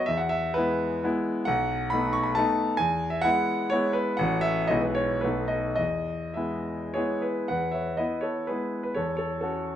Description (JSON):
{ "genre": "classical, romantic triple-time dance for piano with dotted rhythms", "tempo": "96-143 BPM", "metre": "3/4", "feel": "rubato", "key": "E major", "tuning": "A4 = 440 Hz", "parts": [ { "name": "clear concert grand piano", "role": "solo", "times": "0.0-9.8 s", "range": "A1 to C#6", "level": "-24 LUFS", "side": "equal", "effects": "none" } ], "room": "moderate recital hall reverb, RT60 1.5 s", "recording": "close, detailed microphones", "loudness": "-24 LUFS", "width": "side -10 dB against mid", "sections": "0.0-7.5 A section; 7.5-9.8 B section", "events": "none", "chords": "0.1 E; 1.5 B7; 2.8 E; 4.2 F#m/A; 4.7 E/B; 5.2 B7; 5.8 E; 9.0 F#m7/E" }